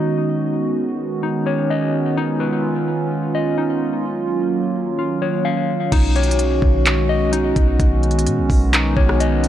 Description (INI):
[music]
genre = hip hop, atmospheric cloud-rap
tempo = 128 BPM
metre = 4/4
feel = half-time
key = B lydian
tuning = A4 = 441 Hz
[part]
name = hollow soft pad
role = sustained chords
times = 0.0-9.5 s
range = D#3 to F#4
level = -20 LUFS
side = right 2 dB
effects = chorus, sidechain pumping, low-pass filter
[part]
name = mellow electric guitar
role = arpeggios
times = 0.0-9.5 s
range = D#4 to E#5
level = -24 LUFS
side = left 8 dB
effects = tremolo, low-pass filter, digital delay
[part]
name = clean 808-style bass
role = bass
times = 5.9-9.5 s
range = B1 to B2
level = -18 LUFS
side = right 1 dB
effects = none
[part]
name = smooth R&B drum kit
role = drums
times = 5.9-9.5 s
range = crash cymbal, handclaps, hi-hat, kick drum, rim click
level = -20 LUFS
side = equal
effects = vintage 12-bit sampler grit
[sound]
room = light reverb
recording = faint mains hum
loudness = -16 LUFS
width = side -11 dB against mid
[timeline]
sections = 0.0-5.9 A section; 5.9-9.5 B section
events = filter sweep 0.0-5.9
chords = 0.0 B69; 2.2 C#9; 4.0 D#m9; 5.9 B69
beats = | 0.30 0.77 1.23 1.70 | 2.17 2.64 3.11 3.58 | 4.05 4.51 4.98 5.45 | 5.92 6.39 6.86 7.33 | 7.80 8.27 8.73 9.20